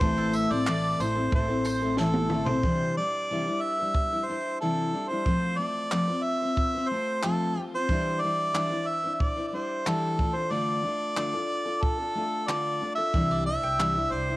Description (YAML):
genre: acoustic pop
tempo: 91 BPM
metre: 4/4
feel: straight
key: C major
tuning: A4 = 440 Hz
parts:
  - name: clear harmonica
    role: melody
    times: 0.0-14.4 s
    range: A4 to E5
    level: -28 LUFS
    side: right 1 dB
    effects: cassette tape
  - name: picked steel-string acoustic guitar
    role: accompaniment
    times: 0.0-14.4 s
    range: A2 to C5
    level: -29 LUFS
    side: left 2 dB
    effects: cassette tape
  - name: upright bass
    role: bass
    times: 0.0-2.6, 13.1-14.4 s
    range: A1 to C2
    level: -34 LUFS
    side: equal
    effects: none
  - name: compact cocktail drum kit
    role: drums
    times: 0.0-13.9 s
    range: handclaps, kick drum, snare drum, tambourine, toms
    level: -29 LUFS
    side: equal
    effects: cassette tape
  - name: mandolin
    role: arpeggios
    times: 0.2-2.0, 13.3-14.3 s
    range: A4 to G5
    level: -39 LUFS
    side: right 4 dB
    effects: cassette tape
room: moderate spring reverb, RT60 2.2 s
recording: home recording on cassette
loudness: -24 LUFS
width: side -18 dB against mid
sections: 0.0-2.6 A section; 2.6-14.4 B section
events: drum fill 2.0-2.6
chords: 0.0 Am; 2.6 Cadd9; 5.3 F; 7.9 Cadd9/E; 10.2 Dm; 13.1 Cadd9